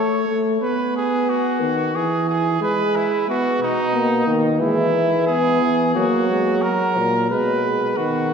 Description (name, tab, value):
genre	classical, imitative canzona for brass ensemble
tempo	90 BPM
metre	4/4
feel	straight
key	E major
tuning	A4 = 442 Hz
part	bright trumpet	second line	0.0-8.3 s	D#4 to C#5	-22 LUFS	right 2 dB	none
part	mellow euphonium	accompaniment	0.0-8.3 s	D#3 to B3	-21 LUFS	equal	none
part	warm bass trombone	bass	3.6-8.3 s	A#2 to F#3	-21 LUFS	left 1 dB	none
room	wet concert hall reverb, RT60 2.5 s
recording	minimal, uncompressed stereo recording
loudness	-17 LUFS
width	side -6 dB against mid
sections	0.0-8.3 A section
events	none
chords	0.0 A; 0.6 B; 1.9 E; 3.3 B; 4.6 E; 6.0 F#; 7.3 B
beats	| 0.62 1.28 1.94 2.61 | 3.27 3.94 4.60 5.27 | 5.95 6.63 7.30 7.97